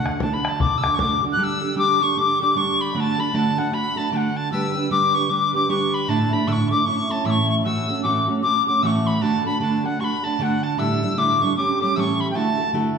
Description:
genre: celtic folk, Celtic hornpipe.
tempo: 153 BPM.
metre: 4/4.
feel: swing 62% on 8ths.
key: D major.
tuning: A4 = 440 Hz.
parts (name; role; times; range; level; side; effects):
tin whistle; melody; 0.0-12.7 s; F#5 to F#6; -21 LUFS; left 2 dB; none.
fingerpicked steel-string acoustic guitar; accompaniment; 0.0-13.0 s; A2 to B4; -22 LUFS; right 2 dB; none.
bodhran; percussion; 0.1-1.1 s; none; -24 LUFS; left 2 dB; none.
room: wet recital hall reverb, RT60 1.4 s.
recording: recorded in a church or concert hall.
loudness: -18 LUFS.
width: side -6 dB against mid.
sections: 0.0-1.4 A section; 1.4-13.0 B section.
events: none.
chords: 0.0 D; 1.4 Gsus2; 2.9 D; 4.5 G; 6.1 Asus4; 6.9 A; 7.6 A6; 9.2 D; 10.8 A7sus4; 11.6 A7; 12.3 Dadd9.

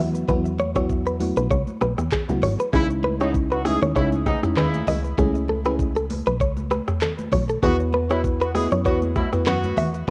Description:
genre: afrobeats.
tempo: 98 BPM.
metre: 4/4.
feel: swing 55% on 16ths.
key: C# minor.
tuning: A4 = 440 Hz.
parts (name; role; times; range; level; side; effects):
FM electric piano with soft pad layer; accompaniment; 0.0-10.1 s; F#3 to B4; -28 LUFS; equal; chorus, cassette tape.
direct-recorded clean electric guitar; riff; 0.0-9.9 s; G#4 to E5; -28 LUFS; equal; cassette tape, tape echo.
plucky analog bass; bass; 0.0-10.1 s; G#1 to F#2; -28 LUFS; equal; none.
afro-pop drum kit; drums; 0.1-10.1 s; handclaps, hi-hat, kick drum, rim click, shaker, toms; -28 LUFS; equal; vintage 12-bit sampler grit.
congas; percussion; 0.3-9.9 s; none; -34 LUFS; equal; none.
warm horn section; second line; 2.7-9.9 s; G#2 to G#4; -30 LUFS; equal; cassette tape, tape echo.
room: light reverb.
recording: home recording on cassette.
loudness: -22 LUFS.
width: mono.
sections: 0.0-2.7 A section; 2.7-10.1 B section.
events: none.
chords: 0.0 Esus2; 2.7 C#madd9; 5.2 Amaj7; 7.6 Esus2.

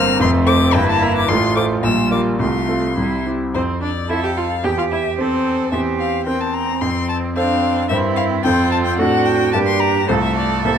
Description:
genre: quick classical-period movement for piano quartet.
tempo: 110 BPM.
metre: 2/4.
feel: straight.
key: F major.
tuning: A4 = 440 Hz.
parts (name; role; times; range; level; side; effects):
rich violin; melody; 0.0-10.8 s; C5 to F6; -22 LUFS; left 8 dB; none.
rich cello; second line; 0.0-10.8 s; G3 to A4; -22 LUFS; right 8 dB; none.
clear grand piano; accompaniment; 0.0-10.8 s; F1 to D5; -19 LUFS; left 1 dB; none.
rich viola; accompaniment; 0.0-10.8 s; A3 to G4; -23 LUFS; right 3 dB; none.
room: light reverb.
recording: close, detailed microphones.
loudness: -15 LUFS.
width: side -8 dB against mid.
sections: 0.0-3.5 A section; 3.5-10.8 B section.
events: none.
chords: 0.2 F; 0.7 Edim/G; 1.3 F/A; 1.8 Gm7/Bb; 2.4 F/C; 3.0 C; 3.5 F; 4.6 C/E; 5.7 C7/E; 6.8 F; 7.9 C7/G; 8.4 F; 9.0 D7/A; 9.5 Gm; 10.1 F/C.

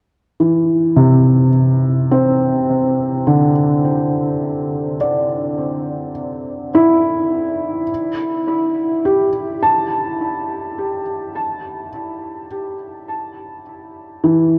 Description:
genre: ambient.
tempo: 52 BPM.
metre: 4/4.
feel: straight.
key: unclear.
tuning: A4 = 439 Hz.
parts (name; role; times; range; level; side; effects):
felt-muted upright piano; solo; 0.4-14.6 s; C3 to A5; -17 LUFS; equal; tape echo.
room: wet huge ambient reverb, RT60 7.7 s.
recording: worn, warbling old tape, cassette tape, warbly pitch drift.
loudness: -17 LUFS.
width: mono.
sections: 0.0-14.6 A section.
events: none.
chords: 0.0 Cadd9; 7.9 C6 (rootless).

